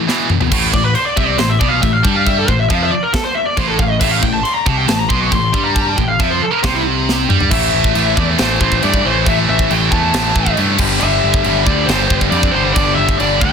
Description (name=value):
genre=heavy metal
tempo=137 BPM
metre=4/4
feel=straight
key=A minor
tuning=A4 = 440 Hz
part: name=heavy high-gain guitar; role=riff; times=0.0-13.5 s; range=E2 to A3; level=-20 LUFS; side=left 12 dB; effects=distortion
part: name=heavy high-gain guitar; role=riff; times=0.0-13.5 s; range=E2 to A3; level=-18 LUFS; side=right 15 dB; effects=distortion
part: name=tight metal drum kit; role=drums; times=0.1-13.5 s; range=china cymbal, crash cymbal, kick drum, snare drum, toms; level=-18 LUFS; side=equal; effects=none
part: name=growling picked electric bass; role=bass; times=0.5-13.5 s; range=G1 to G2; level=-20 LUFS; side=equal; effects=overdrive
part: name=high-gain lead guitar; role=melody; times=0.7-13.5 s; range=E4 to C#6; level=-18 LUFS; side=left 1 dB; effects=distortion
room=little or no reverb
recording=dense, heavily limited modern master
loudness=-12 LUFS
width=side -6 dB against mid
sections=0.5-7.5 A section; 7.5-13.5 B section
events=break 0.0-0.5; drum fill 0.1-0.5, 7.1-7.5; lead electric guitar solo 0.5-7.5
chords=0.1 E5; 0.5 Am; 7.5 A5; 10.8 G5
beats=0.08 | 0.52 0.95 1.39 1.82 | 2.26 2.70 3.13 3.57 | 4.01 4.45 4.88 5.32 | 5.76 6.20 6.63 7.07 | 7.51 7.95 8.38 8.82 | 9.26 9.70 10.14 10.57 | 11.01 11.45 11.88 12.32 | 12.76 13.20